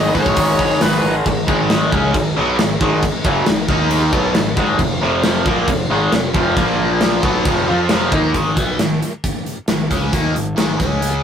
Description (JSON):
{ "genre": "hard rock", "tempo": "136 BPM", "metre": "4/4", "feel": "straight", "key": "unclear", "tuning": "A4 = 442 Hz", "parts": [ { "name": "bluesy overdriven lead guitar", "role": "melody", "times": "0.0-1.1 s", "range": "B4 to D#5", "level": "-19 LUFS", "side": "equal", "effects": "distortion" }, { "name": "overdriven tonewheel organ", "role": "sustained chords", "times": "0.0-8.3 s", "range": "F3 to A#5", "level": "-29 LUFS", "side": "equal", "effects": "none" }, { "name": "biting overdriven guitar", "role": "riff", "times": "0.0-11.2 s", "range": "F2 to F4", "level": "-20 LUFS", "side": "equal", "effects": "phaser" }, { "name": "raw garage guitar", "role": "riff", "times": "0.0-8.3 s", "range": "F2 to F4", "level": "-19 LUFS", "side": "equal", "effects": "overdrive" }, { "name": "fuzz fingered electric bass", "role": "bass", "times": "0.0-11.2 s", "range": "F1 to F2", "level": "-23 LUFS", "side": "right 1 dB", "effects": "overdrive" }, { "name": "gated 80s drum kit", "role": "drums", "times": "0.1-11.1 s", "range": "crash cymbal, hi-hat, kick drum, snare drum", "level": "-18 LUFS", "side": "equal", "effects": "none" } ], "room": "moderate studio reverb, RT60 0.6 s", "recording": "rough rehearsal-room recording, warm saturation", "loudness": "-14 LUFS", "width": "side -8 dB against mid", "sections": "0.0-1.3 A section; 1.3-8.3 B section; 8.3-11.2 C section", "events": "none", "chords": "0.0 G#m; 3.7 D#5; 4.1 G#m; 4.8 F5; 6.6 A#5; 7.2 F5; 8.3 G#m; 10.8 C#5" }